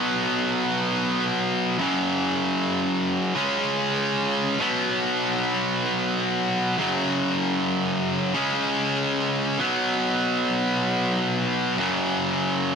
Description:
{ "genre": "rock", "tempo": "free time", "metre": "none", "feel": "none", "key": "unclear", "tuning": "A4 = 439 Hz", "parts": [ { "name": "high-gain distorted guitar", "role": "solo", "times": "0.0-12.8 s", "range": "F#2 to C#4", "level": "-21 LUFS", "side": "equal", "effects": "distortion" } ], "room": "moderate studio reverb, RT60 0.5 s", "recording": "none", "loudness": "-21 LUFS", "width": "side -6 dB against mid", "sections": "0.0-12.8 A section", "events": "none", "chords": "0.0 B5; 1.8 F#5; 3.3 C#5; 4.6 B5; 6.8 F#5; 8.3 C#5; 9.6 B5; 11.8 F#5" }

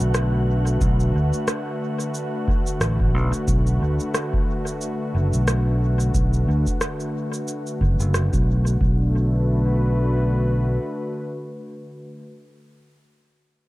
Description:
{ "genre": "ambient dub", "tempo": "90 BPM", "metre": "4/4", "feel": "swing 57% on 16ths", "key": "B minor", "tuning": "A4 = 440 Hz", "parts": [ { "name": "warm analog pad", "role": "sustained chords", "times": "0.0-12.2 s", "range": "D3 to B4", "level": "-26 LUFS", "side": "left 1 dB", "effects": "chorus" }, { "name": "fingered electric bass", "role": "bass", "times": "0.0-10.8 s", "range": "F#1 to D2", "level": "-20 LUFS", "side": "equal", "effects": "none" }, { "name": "electronic cabasa and rim click", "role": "drums", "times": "0.0-8.8 s", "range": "none", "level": "-29 LUFS", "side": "equal", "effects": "dub echo" }, { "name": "wind-like tuned noise texture", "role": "texture", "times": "0.0-8.8 s", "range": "F#5", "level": "-38 LUFS", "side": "right 1 dB", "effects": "built-in reverb" }, { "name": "electronic kick drum", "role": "drums", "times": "0.8-9.0 s", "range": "none", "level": "-23 LUFS", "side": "equal", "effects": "none" } ], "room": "light reverb", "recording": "dark, warm production", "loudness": "-19 LUFS", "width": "side -18 dB against mid", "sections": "0.0-8.8 A section; 8.8-11.5 B section", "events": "none", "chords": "0.0 Bm7" }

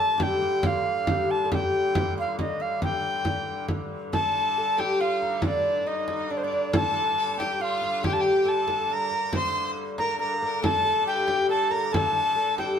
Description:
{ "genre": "medieval dance", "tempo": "138 BPM", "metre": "3/4", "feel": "straight", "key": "G minor", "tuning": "A4 = 436 Hz", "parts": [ { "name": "bright reedy tenor recorder", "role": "melody", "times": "0.0-12.8 s", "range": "C5 to C6", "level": "-25 LUFS", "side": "left 1 dB", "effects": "none" }, { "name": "oud", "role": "second line", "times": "0.0-12.8 s", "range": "D4 to C5", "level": "-29 LUFS", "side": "equal", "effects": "none" }, { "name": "warm hurdy-gurdy", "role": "drone", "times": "0.0-12.8 s", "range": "G2 to D3", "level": "-34 LUFS", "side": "left 2 dB", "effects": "none" }, { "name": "frame drum", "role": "percussion", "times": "0.2-12.8 s", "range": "none", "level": "-29 LUFS", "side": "right 1 dB", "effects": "none" }, { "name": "clear fiddle", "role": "second line", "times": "4.1-12.8 s", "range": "D4 to C5", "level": "-34 LUFS", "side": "left 4 dB", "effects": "none" } ], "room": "wet stone room reverb, RT60 1.1 s", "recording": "band playing live in one room", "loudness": "-23 LUFS", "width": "side -8 dB against mid", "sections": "0.0-4.1 A section; 4.1-12.8 B section", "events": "none", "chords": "none" }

